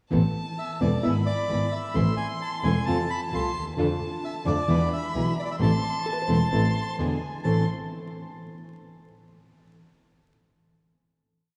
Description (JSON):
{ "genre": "tango", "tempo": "131 BPM", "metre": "4/4", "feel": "rubato", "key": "A harmonic minor", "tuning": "A4 = 441 Hz", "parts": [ { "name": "warm violin", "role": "second line", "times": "0.1-7.7 s", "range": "G#5 to C6", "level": "-38 LUFS", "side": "equal", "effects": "none" }, { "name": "nylon-string guitar", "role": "accompaniment", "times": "0.1-7.6 s", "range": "A2 to F4", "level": "-30 LUFS", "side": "equal", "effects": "none" }, { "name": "warm studio string section", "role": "stabs", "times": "0.1-7.7 s", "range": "B3 to A4", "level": "-39 LUFS", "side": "equal", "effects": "none" }, { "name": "rich double bass", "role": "bass", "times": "0.1-7.7 s", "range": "E1 to F2", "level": "-29 LUFS", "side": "equal", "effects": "none" }, { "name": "bandoneon", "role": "melody", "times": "0.6-7.7 s", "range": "D5 to C6", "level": "-34 LUFS", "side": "equal", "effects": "analog delay" }, { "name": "hollow-body jazz guitar", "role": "second line", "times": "6.1-7.7 s", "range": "A4 to C5", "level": "-41 LUFS", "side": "equal", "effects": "analog delay" } ], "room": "wet church reverb, RT60 3.8 s", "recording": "dreamy mix soaked in reverb, vinyl crackle, studio ambience", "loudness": "-26 LUFS", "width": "mono", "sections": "0.1-7.5 A section; 7.5-9.3 final chord", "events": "none", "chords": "0.1 Amadd9; 1.0 E/G#; 2.0 Am; 2.9 F; 3.8 Dm/F; 4.7 E; 5.6 Am; 7.0 E7; 7.5 Am", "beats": "| 0.12 0.58 1.04 1.50 | 1.96 2.42 2.87 3.33 | 3.78 4.24 4.69 5.15 | 5.61 6.06 6.53 6.99 | 7.46" }